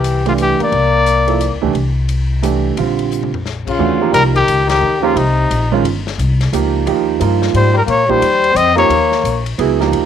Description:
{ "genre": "modal jazz", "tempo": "176 BPM", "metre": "3/4", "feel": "swing 63% on 8ths", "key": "C mixolydian, Eb mixolydian from 3.8 s", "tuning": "A4 = 437 Hz", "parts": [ { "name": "warm trumpet", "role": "melody", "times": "0.0-1.6, 3.7-9.4 s", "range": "Eb4 to Eb5", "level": "-14 LUFS", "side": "left 2 dB", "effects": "none" }, { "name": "clear trombone", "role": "second line", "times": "0.0-1.6, 3.7-9.4 s", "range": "C3 to C4", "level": "-19 LUFS", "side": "left 10 dB", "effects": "none" }, { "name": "upright bass", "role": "bass", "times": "0.0-10.1 s", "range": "G1 to Bb2", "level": "-17 LUFS", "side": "left 1 dB", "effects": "none" }, { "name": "swinging big-band drum kit", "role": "drums", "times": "0.0-10.0 s", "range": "crash cymbal, hi-hat, kick drum, ride cymbal, snare drum, toms", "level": "-28 LUFS", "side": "left 8 dB", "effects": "none" }, { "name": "warm concert grand piano", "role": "accompaniment", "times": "0.3-10.1 s", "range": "D3 to A4", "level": "-16 LUFS", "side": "right 11 dB", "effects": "none" } ], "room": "light reverb", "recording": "1960s-style stereo with parts hard left and right", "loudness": "-12 LUFS", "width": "side -9 dB against mid", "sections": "0.0-3.8 A section; 3.8-10.1 B section", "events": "drum fill 3.1-3.5; band accent 4.6", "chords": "0.0 C9; 1.8 C69; 2.8 Bb; 3.8 Eb13" }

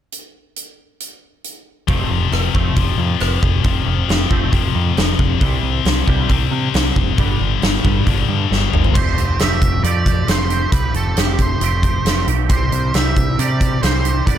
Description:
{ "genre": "quiet-loud alternative rock", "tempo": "136 BPM", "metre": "4/4", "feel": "straight", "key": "unclear", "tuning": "A4 = 440 Hz", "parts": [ { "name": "huge arena drum kit", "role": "drums", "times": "0.1-14.4 s", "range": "crash cymbal, hi-hat, kick drum, rim click, snare drum, toms", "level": "-18 LUFS", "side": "equal", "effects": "none" }, { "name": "twangy electric guitar", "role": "arpeggios", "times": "1.9-14.4 s", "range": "G2 to G4", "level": "-26 LUFS", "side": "right 11 dB", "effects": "ensemble chorus, tape echo" }, { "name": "scooped high-gain guitar", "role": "riff", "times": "1.9-9.0 s", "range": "F2 to C4", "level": "-20 LUFS", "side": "left 10 dB", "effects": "distortion" }, { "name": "growling picked electric bass", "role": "bass", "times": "1.9-14.4 s", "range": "F1 to C3", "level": "-19 LUFS", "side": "equal", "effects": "overdrive" }, { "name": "octave-fuzz lead guitar", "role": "melody", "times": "8.9-14.4 s", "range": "G4 to E5", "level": "-24 LUFS", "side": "right 1 dB", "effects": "distortion" } ], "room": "little or no reverb", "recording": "none", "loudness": "-14 LUFS", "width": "side -10 dB against mid", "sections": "0.1-1.9 A section; 1.9-9.0 B section; 9.0-14.4 C section", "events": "drum fill 8.5-9.0", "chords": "0.1 N.C.; 1.9 F; 5.4 C; 7.2 G5; 9.0 Fadd9; 12.5 C" }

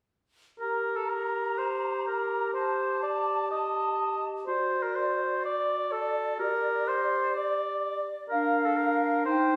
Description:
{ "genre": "quick classical-period movement for symphony orchestra", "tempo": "125 BPM", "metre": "4/4", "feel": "straight", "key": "G minor", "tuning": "A4 = 440 Hz", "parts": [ { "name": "hollow flute section", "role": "second line", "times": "0.6-9.6 s", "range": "D5 to Bb5", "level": "-35 LUFS", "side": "equal", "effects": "none" }, { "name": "mellow clarinet", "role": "second line", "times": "0.6-9.6 s", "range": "D4 to G4", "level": "-35 LUFS", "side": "equal", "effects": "none" }, { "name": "mellow oboe", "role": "second line", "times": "0.6-9.6 s", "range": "A4 to Eb5", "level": "-31 LUFS", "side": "equal", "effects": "none" } ], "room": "wet stone room reverb, RT60 1.2 s", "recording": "heard from further back in the room", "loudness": "-29 LUFS", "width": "mono", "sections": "0.6-9.6 A section", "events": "none", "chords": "0.6 Gm; 2.5 Am7b5/G; 4.5 D7/F#; 6.4 Gm; 8.3 Bb/D" }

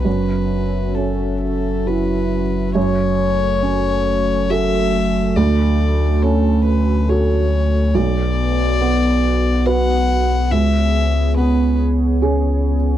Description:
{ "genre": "neoclassical piano and strings", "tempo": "69 BPM", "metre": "3/4", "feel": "rubato", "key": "F# minor", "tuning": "A4 = 442 Hz", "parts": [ { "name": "warm violin", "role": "melody", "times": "0.0-11.8 s", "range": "A4 to F#5", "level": "-23 LUFS", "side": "left 6 dB", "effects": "none" }, { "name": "felt-muted upright piano", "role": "accompaniment", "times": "0.0-13.0 s", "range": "B1 to B4", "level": "-19 LUFS", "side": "right 4 dB", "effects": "none" }, { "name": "warbly tape-like pad", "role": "sustained chords", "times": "0.0-13.0 s", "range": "A3 to E5", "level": "-25 LUFS", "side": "left 1 dB", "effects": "chorus, built-in reverb" }, { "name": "pure sine sub bass", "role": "bass", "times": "0.0-13.0 s", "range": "F#1 to D2", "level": "-19 LUFS", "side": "left 1 dB", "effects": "none" } ], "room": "little or no reverb", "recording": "dry, close 1970s-style studio recording", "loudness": "-15 LUFS", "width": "side -12 dB against mid", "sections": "0.0-2.8 A section; 2.8-13.0 B section", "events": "none", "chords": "0.1 F#5; 2.8 F#m; 5.4 Dmaj7; 8.0 Bm; 10.5 C#m7" }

